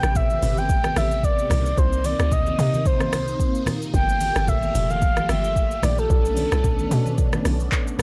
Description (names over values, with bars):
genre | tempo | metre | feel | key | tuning
amapiano | 111 BPM | 4/4 | swing 55% on 16ths | unclear | A4 = 442 Hz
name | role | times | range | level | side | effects
breathy flute-like synth lead | melody | 0.0-7.7 s | A4 to G5 | -27 LUFS | equal | chorus, analog delay
string machine, full ensemble | sustained chords | 0.0-8.0 s | C3 to G4 | -32 LUFS | equal | phaser, ensemble chorus, sidechain pumping
hollow log drum bass | bass | 0.0-7.7 s | F1 to C3 | -26 LUFS | equal | none
afro-pop drum kit | drums | 0.0-8.0 s | handclaps, hi-hat, kick drum, rim click, shaker | -26 LUFS | equal | none
congas | percussion | 0.1-8.0 s | none | -32 LUFS | equal | none
room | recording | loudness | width
digital ambience | dry, gritty hardware recording, cassette tape | -21 LUFS | mono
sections
0.0-8.0 A section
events
none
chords
0.0 Am9; 1.5 Cm9; 3.9 Gm9; 6.1 Bm9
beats
0.15 0.69 1.24 | 1.78 2.32 2.86 3.40 | 3.94 4.48 5.02 5.56 | 6.10 6.64 7.18 7.72